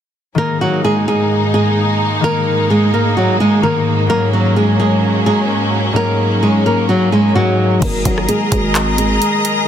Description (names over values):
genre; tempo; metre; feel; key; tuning
hip hop, trap; 129 BPM; 4/4; half-time; unclear; A4 = 440 Hz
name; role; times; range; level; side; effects
concert harp; accompaniment; 0.3-9.7 s; G#2 to G#4; -20 LUFS; left 3 dB; low-pass filter
flamenco guitar; melody; 0.4-9.6 s; F#3 to A#4; -15 LUFS; right 1 dB; low-pass filter, ping-pong delay
clear symphonic string section; sustained chords; 0.4-9.7 s; G#2 to A#5; -18 LUFS; equal; none
growling 808-style bass; bass; 7.8-9.2 s; G#1; -20 LUFS; equal; none
trap drum kit; drums; 7.8-9.6 s; crash cymbal, handclaps, hi-hat, kick drum, rim click; -20 LUFS; equal; none
room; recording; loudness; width
light reverb, studio reverb; dense, heavily limited modern master; -12 LUFS; side -9 dB against mid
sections
0.4-7.8 A section; 7.8-9.7 B section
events
filter sweep 7.8-9.7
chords
0.4 G#sus2; 4.1 F#add9/G#; 7.8 G#sus2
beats
| 0.38 0.84 1.31 1.77 | 2.24 2.71 3.17 3.63 | 4.10 4.57 5.03 5.50 | 5.96 6.43 6.89 7.36 | 7.82 8.29 8.75 9.22